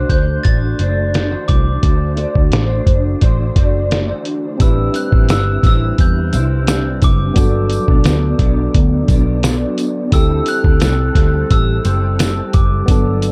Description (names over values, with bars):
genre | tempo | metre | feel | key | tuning
indie pop, bedroom pop | 87 BPM | 4/4 | straight | unclear | A4 = 440 Hz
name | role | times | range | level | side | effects
glockenspiel with soft plastic mallets | melody | 0.0-13.3 s | D6 to A6 | -27 LUFS | equal | lush chorus, slapback echo
vibraphone with soft mallets | second line | 0.0-4.1 s | C5 to D5 | -26 LUFS | equal | ensemble chorus, slapback echo
electric guitar through a small old amp | accompaniment | 0.0-13.3 s | G2 to C5 | -24 LUFS | equal | ensemble chorus, vibrato effect
vintage muted picked electric bass | bass | 0.0-13.3 s | F#1 to E2 | -19 LUFS | equal | none
lo-fi sampler-style drum kit | drums | 0.1-13.3 s | hi-hat, kick drum, snare drum | -16 LUFS | equal | none
barky tine electric piano | accompaniment | 4.6-13.3 s | F#3 to B4 | -25 LUFS | equal | cassette tape
tambourine | percussion | 4.6-13.3 s | none | -36 LUFS | equal | none
room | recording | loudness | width
light reverb | dark, warm production | -15 LUFS | mono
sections
0.0-4.6 A section; 4.6-13.3 B section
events
none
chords
0.0 D9; 4.6 Am11; 7.4 Gmaj7; 10.1 D7sus4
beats
0.44 1.14 | 1.83 2.52 3.21 3.91 | 4.60 5.29 5.98 6.67 | 7.36 8.05 8.74 9.43 | 10.12 10.81 11.50 12.19 | 12.88